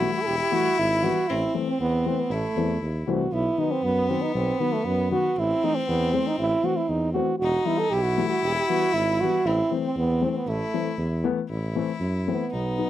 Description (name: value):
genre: klezmer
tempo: 118 BPM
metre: 2/4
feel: straight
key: A dorian sharp4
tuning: A4 = 440 Hz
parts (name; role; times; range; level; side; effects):
- French horn with straight mute; melody; 0.0-12.9 s; A3 to A4; -24 LUFS; right 3 dB; none
- clear violin; second line; 0.0-12.9 s; B3 to E4; -30 LUFS; left 4 dB; none
- dark upright piano; accompaniment; 0.0-12.9 s; D#3 to D#4; -28 LUFS; left 8 dB; none
- mellow tuba; bass; 0.0-12.8 s; E1 to F#2; -28 LUFS; equal; none
room: little or no reverb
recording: dry, close 1970s-style studio recording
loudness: -22 LUFS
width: side -12 dB against mid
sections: 0.0-3.3 A section; 3.3-11.5 A section; 11.5-12.9 B section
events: French horn solo 11.5-12.9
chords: 0.0 Em; 1.3 Am; 3.3 B; 5.4 Am; 7.4 Em; 9.5 Am